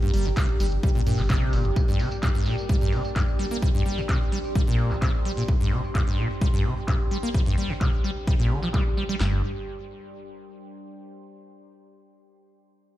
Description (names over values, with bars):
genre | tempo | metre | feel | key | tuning
acid house | 129 BPM | 4/4 | straight | G minor | A4 = 440 Hz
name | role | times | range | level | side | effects
dark analog pad | sustained chords | 0.0-9.2 s | G4 to G5 | -42 LUFS | right 7 dB | none
acid bass, saw | riff | 0.0-9.4 s | G1 to Bb3 | -27 LUFS | equal | tube saturation, wide subtle chorus, sidechain pumping, tape echo
punchy analog drum machine | drums | 0.0-9.2 s | handclaps, hi-hat, tambourine | -36 LUFS | equal | low-pass filter on hats, low-pass filter on snare, low-pass filter on perc
deep dark ambient pad | texture | 0.0-11.0 s | G4 to C6 | -34 LUFS | equal | chorus, built-in reverb, sidechain pumping
warm sub bass | bass | 0.1-1.7, 9.2-9.4 s | G1 to G2 | -25 LUFS | equal | sidechain pumping
punchy analog drum machine | drums | 0.4-9.3 s | handclaps, kick drum, snare drum | -24 LUFS | equal | none
room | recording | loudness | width
little or no reverb | played on a big sound system in a bare room, large studio reverb | -22 LUFS | side -14 dB against mid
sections
0.0-9.2 A section; 9.2-11.1 B section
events
filter sweep on drum 0.0-9.2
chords
0.0 Gm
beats
0.37 0.83 1.30 | 1.76 2.23 2.69 3.16 | 3.62 4.09 4.55 5.02 | 5.48 5.95 6.42 6.88 | 7.34 7.81 8.28 8.74 | 9.21 9.67 10.14 10.60